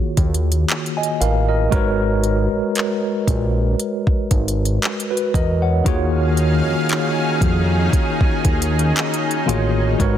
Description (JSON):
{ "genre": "contemporary R&B", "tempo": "58 BPM", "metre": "4/4", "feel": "swing 54% on 16ths", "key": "Eb minor", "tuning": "A4 = 440 Hz", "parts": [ { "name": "tine electric piano", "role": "accompaniment", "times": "0.0-10.2 s", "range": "Ab2 to Ab5", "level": "-21 LUFS", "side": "equal", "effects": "medium stereo tremolo" }, { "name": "fat analog bass", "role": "bass", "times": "0.2-10.2 s", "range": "Ab1 to F2", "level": "-19 LUFS", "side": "equal", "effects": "none" }, { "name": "smooth R&B drum kit", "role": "drums", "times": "0.2-10.2 s", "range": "handclaps, hi-hat, kick drum", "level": "-20 LUFS", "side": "equal", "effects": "soft clipping on snare" }, { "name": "lush unison pad", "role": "sustained chords", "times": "5.9-10.2 s", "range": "Eb3 to F5", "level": "-22 LUFS", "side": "equal", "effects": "chorus, sidechain pumping" } ], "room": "digital ambience", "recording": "dense, heavily limited modern master", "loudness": "-16 LUFS", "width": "side -10 dB against mid", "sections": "0.0-10.2 A section", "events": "none", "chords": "0.0 Ebm11; 1.7 Abm11; 5.9 Ebm11" }